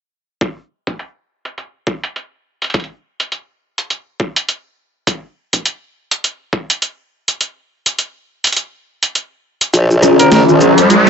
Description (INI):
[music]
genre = glitch hop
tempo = 103 BPM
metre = 4/4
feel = swing 58% on 16ths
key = Bb minor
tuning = A4 = 443 Hz
[part]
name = boom bap sampler-style drum kit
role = drums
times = 0.4-11.1 s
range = hi-hat, shaker, snare drum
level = -16 LUFS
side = right 1 dB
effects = overdrive, low-pass filter on hats, low-pass filter on perc, low-pass filter on snare, low-pass filter on room
[part]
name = electronic kick drum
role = drums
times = 0.4-6.7 s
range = none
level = -19 LUFS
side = equal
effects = overdrive, high-pass filter on kick, high-pass filter on room
[part]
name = formant-sweep wobble bass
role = bass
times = 9.7-11.1 s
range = Ab1 to F2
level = -12 LUFS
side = equal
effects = chorus, overdrive, high-pass filter
[part]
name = riser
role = sound effects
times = 10.1-11.1 s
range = none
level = -13 LUFS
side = right 1 dB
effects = none
[part]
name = electric guitar at the edge of break-up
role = stabs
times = 10.0-10.8 s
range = Db4 to Bb4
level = -11 LUFS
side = left 2 dB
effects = sidechain pumping, low-pass filter, digital delay
[part]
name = warm trumpet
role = melody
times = 10.2-10.4 s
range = Bb4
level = -17 LUFS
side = right 1 dB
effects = vintage 12-bit sampler grit, low-pass filter, digital delay
[sound]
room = light reverb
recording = nothing above 8.0 kHz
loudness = -14 LUFS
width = side -6 dB against mid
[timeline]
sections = 0.4-9.7 A section; 9.7-11.1 B section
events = kick drops out 7.4-9.7; build-up 9.7-11.1; filter sweep on clean electric guitar 9.7-11.1; riser 10.1-11.1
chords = 0.4 N.C.; 9.7 Bbm7